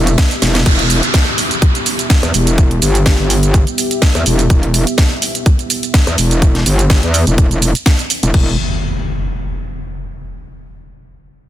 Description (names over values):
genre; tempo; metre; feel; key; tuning
bass house; 125 BPM; 4/4; swing 54% on 16ths; E minor; A4 = 441 Hz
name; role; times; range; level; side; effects
dark analog pad; sustained chords; 0.0-8.6 s; B3 to E5; -24 LUFS; right 1 dB; chorus, vintage 12-bit sampler grit, sidechain pumping
metallic wobble bass; bass; 0.0-8.6 s; E1 to E2; -13 LUFS; equal; distortion, chorus, sidechain pumping
garage drum kit; drums; 0.1-8.4 s; crash cymbal, hi-hat, ride cymbal, shaker, snare drum; -17 LUFS; right 2 dB; studio reverb
electronic kick drum; drums; 0.2-8.4 s; none; -11 LUFS; equal; studio reverb
downlifter and impact; sound effects; 0.7-4.5, 8.3-10.3 s; none; -20 LUFS; equal; none
room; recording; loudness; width
digital ambience; dense, heavily limited modern master, faint mains hum; -11 LUFS; side -12 dB against mid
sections
0.7-8.3 A section; 8.3-10.3 B section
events
drum fill 0.4; filter sweep on analog synth pad 0.7-8.3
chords
0.0 Em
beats
0.18 | 0.66 1.14 1.62 2.10 | 2.58 3.06 3.54 4.02 | 4.50 4.98 5.46 5.94 | 6.42 6.90 7.38 7.86 | 8.34 8.82 9.30 9.78